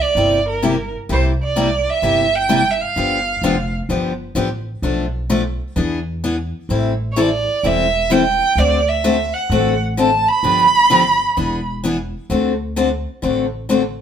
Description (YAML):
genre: acoustic string swing (jazz manouche)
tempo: 128 BPM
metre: 4/4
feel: swing 63% on 8ths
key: G mixolydian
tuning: A4 = 440 Hz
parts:
  - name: warm violin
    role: melody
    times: 0.0-3.7, 7.1-11.7 s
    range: Bb4 to B5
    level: -16 LUFS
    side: right 4 dB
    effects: none
  - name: picked steel-string acoustic guitar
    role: accompaniment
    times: 0.2-13.8 s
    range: B2 to A4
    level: -19 LUFS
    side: left 4 dB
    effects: none
  - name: upright bass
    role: bass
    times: 0.2-14.0 s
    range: E1 to E2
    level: -23 LUFS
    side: equal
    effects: none
room: moderate studio reverb, RT60 0.8 s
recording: band playing live in one room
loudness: -15 LUFS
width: side -8 dB against mid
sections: 0.0-14.0 A section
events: none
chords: 0.0 C7; 3.0 G7; 4.8 Bm7b5; 5.8 E7; 6.7 Am7; 8.6 D7; 10.4 G7; 11.4 E7; 12.3 D7